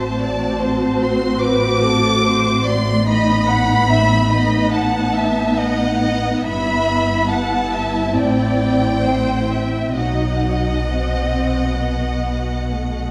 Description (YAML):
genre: classical, slow romantic movement for string orchestra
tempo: 63-75 BPM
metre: 4/4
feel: rubato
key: unclear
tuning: A4 = 438 Hz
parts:
  - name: dark studio violin section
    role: melody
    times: 0.0-13.1 s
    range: F#5 to D6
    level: -25 LUFS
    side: equal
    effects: none
  - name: rich studio violin section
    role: second line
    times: 0.0-13.1 s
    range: A4 to F#5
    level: -26 LUFS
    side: equal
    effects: none
  - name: warm studio viola section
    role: accompaniment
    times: 0.0-13.1 s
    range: F#3 to F#4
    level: -23 LUFS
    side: equal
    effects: none
  - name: rich studio cello section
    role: bass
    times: 0.0-13.1 s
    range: G2 to B2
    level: -26 LUFS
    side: equal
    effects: none
  - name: warm studio double bass section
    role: bass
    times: 0.0-13.1 s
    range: G1 to B1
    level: -25 LUFS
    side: equal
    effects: none
room: wet scoring stage reverb, RT60 1.6 s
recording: none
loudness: -18 LUFS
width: mono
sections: 0.0-13.1 A section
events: none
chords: 0.0 F#dim/A; 3.1 B7/A; 6.5 Em/G; 8.2 Am; 10.0 B